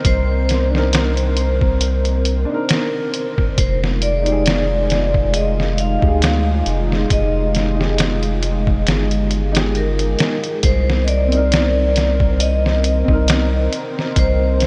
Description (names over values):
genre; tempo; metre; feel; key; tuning
trip hop; 68 BPM; 4/4; swing 55% on 16ths; C minor; A4 = 439 Hz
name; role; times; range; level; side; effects
dark upright piano; accompaniment; 0.0-14.7 s; C4 to Bb4; -29 LUFS; equal; tremolo, tape echo
dark analog pad; sustained chords; 0.0-14.7 s; Ab3 to C5; -27 LUFS; equal; chorus, vintage 12-bit sampler grit
trip hop sampler-style drum kit; drums; 0.0-14.7 s; hi-hat, kick drum, snare drum; -22 LUFS; equal; studio reverb
vibraphone with medium mallets; melody; 0.1-14.7 s; Bb4 to F5; -25 LUFS; equal; tape echo
round analog bass; bass; 0.1-14.7 s; F1 to D2; -20 LUFS; equal; none
room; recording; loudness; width
moderate huge ambient reverb, RT60 7.8 s; dreamy mix soaked in reverb, nothing above 10.4 kHz; -17 LUFS; mono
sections
0.0-14.7 A section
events
none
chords
0.0 Cm9; 3.6 Fm9; 10.6 Cm9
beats
| 0.05 0.93 1.81 2.70 | 3.58 4.46 5.34 6.23 | 7.11 7.99 8.87 9.76 | 10.64 11.52 12.40 13.29 | 14.17